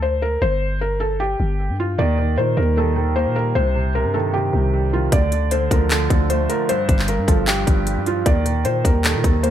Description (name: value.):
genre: hip hop, trap.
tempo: 153 BPM.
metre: 4/4.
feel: half-time.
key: unclear.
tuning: A4 = 440 Hz.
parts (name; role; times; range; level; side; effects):
felt-muted upright piano; melody; 0.0-9.5 s; F4 to D5; -23 LUFS; left 1 dB; low-pass filter, tape echo.
growling 808-style bass; bass; 0.0-9.5 s; G1 to Bb2; -21 LUFS; equal; none.
warm concert grand piano; accompaniment; 2.0-9.5 s; G2 to Bb3; -23 LUFS; right 4 dB; low-pass filter.
trap drum kit; drums; 5.1-9.5 s; handclaps, hi-hat, kick drum; -19 LUFS; left 1 dB; none.
room: light reverb.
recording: none.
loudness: -17 LUFS.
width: side -10 dB against mid.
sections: 0.0-9.5 A section.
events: break 0.0-2.0.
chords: 0.4 Gsus4; 2.0 Eb; 3.6 Cm; 5.1 Dm; 6.7 G7sus4; 8.3 Eb.